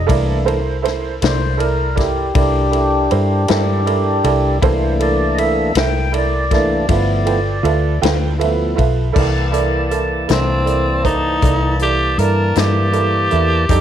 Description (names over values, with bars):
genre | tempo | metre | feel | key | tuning
slow blues | 53 BPM (dotted quarters) | 12/8 | straight | C mixolydian | A4 = 440 Hz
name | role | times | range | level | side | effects
tonewheel organ | sustained chords | 0.0-13.8 s | E3 to A5 | -20 LUFS | left 1 dB | slow rotary speaker
vintage muted fingered electric bass | bass | 0.0-13.8 s | G1 to G2 | -18 LUFS | left 1 dB | none
clear upright piano | accompaniment | 0.1-13.8 s | Eb4 to G5 | -20 LUFS | right 10 dB | none
swinging big-band drum kit | drums | 0.1-13.8 s | crash cymbal, hi-hat, kick drum, ride cymbal, snare drum | -22 LUFS | left 4 dB | none
growling tenor saxophone | melody | 10.3-13.8 s | C4 to Bb4 | -18 LUFS | equal | none
room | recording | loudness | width
light reverb, studio ambience | 1960s-style stereo | -14 LUFS | side -10 dB against mid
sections
0.0-9.2 A section; 9.2-13.8 B section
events
tonewheel organ solo 0.0-9.2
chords
0.1 C13; 6.9 G13; 9.2 C13